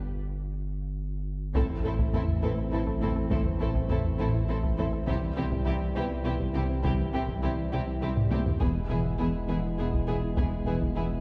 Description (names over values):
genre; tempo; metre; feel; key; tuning
cinematic, hybrid orchestral and electronic film score; 68 BPM (dotted quarters); 6/8; straight; A minor; A4 = 440 Hz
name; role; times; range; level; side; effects
saturated sub bass; bass; 0.0-11.2 s; E1 to C2; -36 LUFS; equal; none
felt-muted upright piano; texture; 0.0-11.2 s; B3 to F5; -46 LUFS; equal; none
warm symphonic violin section; second line; 1.5-11.0 s; E4; -43 LUFS; equal; none
rich symphonic viola section; accompaniment; 1.5-11.0 s; B3 to C4; -42 LUFS; equal; none
mellow French horn section; sustained chords; 1.5-11.2 s; C3 to E4; -39 LUFS; equal; none
rich symphonic cello section; bass; 1.5-11.0 s; E2 to C3; -38 LUFS; equal; none
rich symphonic double bass section; bass; 1.5-11.0 s; E1 to C2; -38 LUFS; equal; none
taiko ensemble; drums; 1.5-11.2 s; none; -34 LUFS; equal; none
warm symphonic violin section; melody; 1.6-11.0 s; G4 to A4; -41 LUFS; equal; none
warm trombone section; sustained chords; 1.6-11.2 s; E3 to A3; -40 LUFS; equal; none
tight sequenced synth; arpeggios; 1.6-11.0 s; C3 to A4; -42 LUFS; equal; none
room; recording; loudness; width
wet scoring stage reverb, RT60 1.9 s; heard from further back in the room; -29 LUFS; mono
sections
0.0-1.6 A section; 1.6-11.2 B section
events
break 0.0-1.6; drum fill 1.1-1.6, 8.2-8.6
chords
0.0 G; 1.6 Am; 5.1 C; 8.6 E